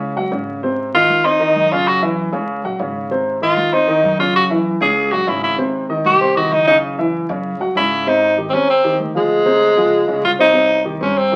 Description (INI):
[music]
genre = Afro-Cuban jazz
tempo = 194 BPM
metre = 4/4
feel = straight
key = Ab major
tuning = A4 = 445 Hz
[part]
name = warm concert grand piano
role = accompaniment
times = 0.0-11.4 s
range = C3 to C6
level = -22 LUFS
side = equal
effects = none
[part]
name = upright bass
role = bass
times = 0.0-11.4 s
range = Gb1 to Ab2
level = -30 LUFS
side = equal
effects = none
[part]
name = edgy tenor saxophone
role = melody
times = 0.9-11.4 s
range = Ab3 to Ab4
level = -16 LUFS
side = equal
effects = none
[sound]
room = wet studio reverb, RT60 0.6 s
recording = very old 78 rpm record, vinyl crackle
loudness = -16 LUFS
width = mono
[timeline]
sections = 0.0-8.1 A section; 8.1-11.4 B section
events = tenor saxophone solo 0.0-8.1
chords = 0.0 Gb5; 0.6 Ab; 1.9 Gb7(no3); 3.1 Ab; 4.3 Gb7(no3); 5.6 Abmaj7; 6.8 Gb5; 8.1 Abmaj7; 9.3 Dm7b5; 9.9 Db; 10.5 Cm